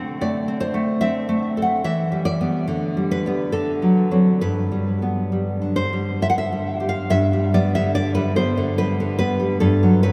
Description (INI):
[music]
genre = romantic piece for solo classical guitar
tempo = 66-74 BPM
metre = 3/4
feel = rubato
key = G major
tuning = A4 = 440 Hz
[part]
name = nylon-string guitar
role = solo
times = 0.0-10.1 s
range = G2 to F#5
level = -20 LUFS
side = equal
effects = subtle chorus
[sound]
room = wet cathedral reverb, RT60 7.5 s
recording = dreamy mix soaked in reverb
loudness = -21 LUFS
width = mono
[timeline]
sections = 0.0-7.1 A section; 7.1-10.1 A section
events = none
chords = 0.0 D7; 1.8 Em; 2.7 G/D; 3.5 D7; 4.4 G; 9.6 D7/G (rootless)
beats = 0.20 1.02 | 1.84 2.68 3.54 | 4.43 5.33 6.23 | 7.11 7.95 8.78 | 9.60